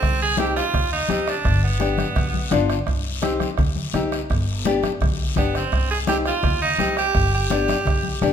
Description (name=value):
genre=latin, cumbia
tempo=168 BPM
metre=4/4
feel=straight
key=C harmonic minor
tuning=A4 = 440 Hz
part: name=raspy tenor saxophone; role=second line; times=0.0-2.7, 5.4-8.3 s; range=B3 to Ab4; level=-23 LUFS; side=right 4 dB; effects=none
part: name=upright bass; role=bass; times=0.0-8.3 s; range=G1 to Eb2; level=-25 LUFS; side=equal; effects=none
part: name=bombo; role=percussion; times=0.0-8.3 s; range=none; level=-25 LUFS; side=right 2 dB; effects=none
part: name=congas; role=percussion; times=0.0-8.3 s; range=none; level=-28 LUFS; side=left 4 dB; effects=none
part: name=guiro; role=percussion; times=0.0-8.3 s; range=none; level=-34 LUFS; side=left 6 dB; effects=none
part: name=nylon-string guitar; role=accompaniment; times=0.4-8.3 s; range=B3 to G4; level=-25 LUFS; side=left 5 dB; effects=none
room=wet large studio reverb, RT60 1.3 s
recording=minimal, uncompressed stereo recording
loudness=-19 LUFS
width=side -8 dB against mid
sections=0.0-8.3 A section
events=tenor saxophone solo 0.0-8.3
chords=0.0 Cm; 1.5 G7; 2.9 Cm; 4.3 G; 5.7 Cm; 7.2 G